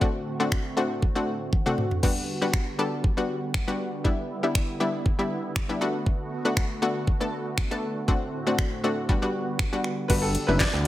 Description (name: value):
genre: dance-pop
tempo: 119 BPM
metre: 4/4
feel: straight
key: G major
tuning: A4 = 440 Hz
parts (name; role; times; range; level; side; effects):
- analog pluck; accompaniment; 0.0-10.9 s; G3 to A4; -27 LUFS; left 2 dB; chorus, sidechain pumping
- filtered supersaw swell; sustained chords; 0.0-10.9 s; A2 to F#4; -33 LUFS; right 2 dB; sidechain pumping
- smooth R&B drum kit; drums; 0.0-10.7 s; crash cymbal, finger snaps, handclaps, hi-hat, kick drum, snare drum, toms; -25 LUFS; equal; none
- bright baby grand piano; melody; 10.1-10.9 s; A4 to D5; -28 LUFS; left 2 dB; none
- hollow square pluck; arpeggios; 10.1-10.8 s; F#5 to F#6; -35 LUFS; right 4 dB; chorus, sidechain pumping, digital delay
- fat analog bass; bass; 10.1-10.9 s; F#1 to D2; -25 LUFS; equal; sidechain pumping
room: light reverb, digital ambience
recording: none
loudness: -24 LUFS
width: side -14 dB against mid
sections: 0.0-10.1 A section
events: drum fill 1.5-2.0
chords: 0.0 D7/A; 2.0 Gmaj7; 4.0 Em7; 5.8 Bm7; 8.1 D7/A; 9.1 Gmaj7